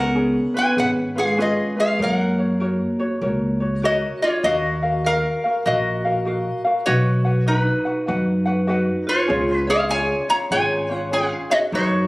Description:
Hawaiian; 99 BPM; 4/4; swing 64% on 8ths; F# major, Eb minor from 4.4 s; A4 = 441 Hz
metal-body resonator slide guitar; melody; 0.0-12.1 s; D#4 to Bb5; -21 LUFS; equal
vibraphone with medium hard mallets; second line; 0.0-12.1 s; G#3 to Db5; -26 LUFS; right 1 dB
ukulele; accompaniment; 0.0-12.1 s; C#4 to F#5; -24 LUFS; left 1 dB
upright bass; bass; 0.0-12.1 s; G#1 to F#2; -23 LUFS; equal
moderate recital hall reverb, RT60 1.6 s; recorded on a phone in the room, club reverb; -18 LUFS; side -22 dB against mid
0.0-4.4 A section; 4.4-12.1 B section
0.0 C#7; 2.0 F#; 4.4 Ebmadd9; 6.9 B; 9.3 Db
0.17 0.78 1.39 | 2.00 2.61 3.22 3.83 | 4.43 5.04 5.65 6.26 | 6.87 7.48 8.08 8.69 | 9.30 9.91 10.51 11.12 | 11.73

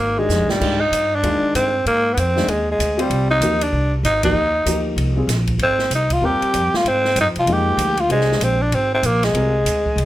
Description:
modal jazz; 192 BPM; 4/4; swing 61% on 8ths; Ab lydian; A4 = 439 Hz
growling tenor saxophone; melody; 0.0-10.1 s; G3 to G4; -18 LUFS; equal
upright bass; bass; 0.0-10.1 s; Ab1 to Ab2; -22 LUFS; equal
warm upright piano; accompaniment; 0.2-9.5 s; Eb3 to C5; -23 LUFS; left 2 dB
open jazz drum kit; drums; 0.3-10.1 s; crash cymbal, hi-hat, kick drum, ride cymbal, snare drum; -27 LUFS; right 1 dB
light reverb; -16 LUFS; side -14 dB against mid
0.0-10.1 A section
drum fill 0.3-0.6; band accent 4.2
0.0 Fm; 0.6 Abmaj7
0.30 | 0.61 0.92 1.24 1.55 | 1.86 2.17 2.48 2.79 | 3.11 3.42 3.73 4.04 | 4.35 4.67 4.98 5.29 | 5.60 5.91 6.22 6.54 | 6.85 7.16 7.47 7.79 | 8.10 8.41 8.72 9.03 | 9.35 9.66 9.97

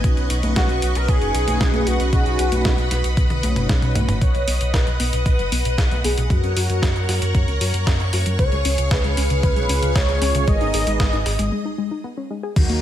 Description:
italo disco; 115 BPM; 4/4; straight; A4 = 440 Hz
string machine, full ensemble; sustained chords; 0.0-12.8 s; Ab4 to D#6; -27 LUFS; equal; ensemble chorus
mellow synth brass; stabs; 0.0-12.8 s; Gb3 to C#5; -29 LUFS; right 3 dB; chorus, cassette tape
round analog bass; bass; 0.0-12.8 s; F#1 to Gb2; -21 LUFS; equal
clean 12-bit digital drum machine; drums; 0.0-12.8 s; cabasa, congas, crash cymbal, hi-hat, snare drum, toms; -25 LUFS; left 1 dB; high-pass filter on hats, high-pass filter on perc, high-pass filter on snare, high-pass filter on toms, high-pass filter on cymbals, high-pass filter on room
electronic kick drum; drums; 0.0-12.7 s; -20 LUFS; equal
wide unison lead; melody; 0.6-11.5 s; F#4 to Eb5; -25 LUFS; equal; analog chorus, ping-pong delay
warbly dusty pluck; arpeggios; 4.2-12.8 s; B2 to Ab4; -28 LUFS; left 2 dB; chorus, digital delay
light reverb; -17 LUFS; side -11 dB against mid
0.0-4.2 A section; 4.2-12.6 B section
drum fill 3.2-4.2; filter sweep on synth arpeggio sound 4.2-12.6; filter sweep on analog polysynth 4.2-12.6; filter sweep on analog synth lead 4.2-12.6; break 11.5-12.6
0.0 Badd9; 4.2 B; 6.3 Gb; 8.4 Db; 10.5 Abm
| 0.04 0.56 1.09 1.61 | 2.13 2.65 3.17 3.69 | 4.22 4.74 5.26 5.78 | 6.30 6.83 7.35 7.87 | 8.39 8.91 9.43 9.96 | 10.48 11.00 11.52 12.04 | 12.56

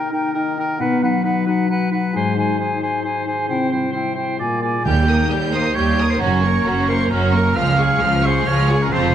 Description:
cinematic; 134 BPM; 3/4; straight; A4 = 440 Hz
dark clarinet; second line; 0.0-4.9 s; Eb4 to F4; -27 LUFS; left 2 dB
hollow concert flute; second line; 0.0-4.9 s; F#5 to Ab5; -24 LUFS; equal
warm oboe; second line; 0.0-9.1 s; Bb4 to G5; -22 LUFS; right 2 dB
concert harp; arpeggios; 0.0-9.1 s; Gb2 to Eb5; -24 LUFS; left 6 dB
dark French horn section; sustained chords; 0.8-4.8 s; Ab3 to C4; -25 LUFS; equal
warm symphonic violin section; melody; 4.9-9.1 s; A5 to G6; -27 LUFS; right 1 dB
warm symphonic violin section; second line; 4.9-9.1 s; F4 to Bb4; -25 LUFS; equal
clear symphonic viola section; accompaniment; 4.9-9.1 s; F3 to Db4; -24 LUFS; right 1 dB
clear symphonic cello section; bass; 4.9-9.1 s; Db2 to Gb2; -22 LUFS; right 2 dB
warm studio double bass section; bass; 4.9-9.1 s; F1 to Eb2; -22 LUFS; right 4 dB
timpani; percussion; 4.9-5.5 s; Eb3; -25 LUFS; right 2 dB
wet scoring stage reverb, RT60 1.9 s; -16 LUFS; side -10 dB against mid
0.0-4.9 A section; 4.9-9.1 B section
build-up 0.0-4.9
0.0 Eb; 0.8 B; 2.1 Ab; 3.5 C; 4.4 Bb7; 4.9 Eb; 6.2 Gb; 7.6 Db
0.35 | 0.80 1.25 1.70 | 2.14 2.59 3.04 | 3.49 3.95 4.40 | 4.86 5.32 5.77 | 6.22 6.66 7.11 | 7.57 8.02 8.47 | 8.91

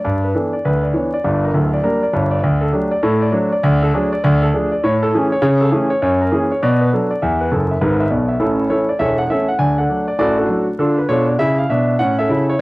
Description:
jazz, stride piano; 201 BPM; 4/4; swing 63% on 8ths; D major, A major from 3.6 s; A4 = 437 Hz
warm concert grand piano; solo; 0.0-12.6 s; D1 to G#5; -14 LUFS; equal; cassette tape
moderate spring reverb, RT60 1.2 s, small room ambience; home recording on cassette, vinyl crackle; -14 LUFS; side -21 dB against mid
0.0-8.4 A section; 8.4-12.6 B section
grand piano fill 7.5-8.4
0.1 G6; 1.2 Gm; 2.4 D; 4.2 Dm; 4.8 A; 5.4 A/C#; 6.0 F#7; 6.6 Bm; 7.2 E; 8.4 A; 9.6 D; 10.8 Dm; 12.0 A
| 0.05 0.35 0.65 0.94 | 1.24 1.54 1.84 2.14 | 2.44 2.73 3.03 3.33 | 3.63 3.93 4.23 4.53 | 4.83 5.12 5.42 5.72 | 6.02 6.32 6.62 6.91 | 7.21 7.51 7.81 8.11 | 8.41 8.71 9.00 9.30 | 9.60 9.90 10.20 10.50 | 10.79 11.09 11.39 11.69 | 11.99 12.29

